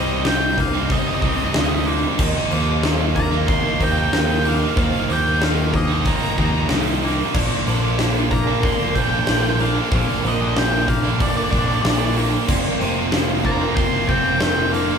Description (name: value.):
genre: post-rock.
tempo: 93 BPM.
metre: 4/4.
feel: straight.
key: unclear.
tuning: A4 = 440 Hz.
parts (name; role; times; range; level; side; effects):
octave-fuzz lead guitar; melody; 0.0-15.0 s; D5 to C6; -24 LUFS; equal; distortion.
muted studio string section; sustained chords; 0.0-15.0 s; D3 to G5; -33 LUFS; right 1 dB; none.
electric guitar through a small old amp; arpeggios; 0.0-15.0 s; Bb4 to Eb5; -30 LUFS; right 4 dB; none.
twangy electric guitar; arpeggios; 0.0-15.0 s; F2 to Eb4; -29 LUFS; left 1 dB; none.
distorted electric guitar; riff; 0.0-15.0 s; F2 to Eb4; -24 LUFS; right 7 dB; overdrive.
overdriven electric guitar; riff; 0.0-15.0 s; F2 to Eb4; -26 LUFS; left 6 dB; none.
fuzz fingered electric bass; bass; 0.0-14.9 s; F1 to Eb2; -23 LUFS; equal; overdrive.
huge arena drum kit; drums; 0.3-14.9 s; crash cymbal, hi-hat, kick drum, snare drum; -22 LUFS; equal; none.
room: wet large studio reverb, RT60 1.0 s.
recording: band playing live in one room.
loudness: -16 LUFS.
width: side -6 dB against mid.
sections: 0.0-15.0 A section.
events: none.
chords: 0.0 Cm7; 2.2 Ebsus2; 7.3 Bb; 12.5 Fsus4.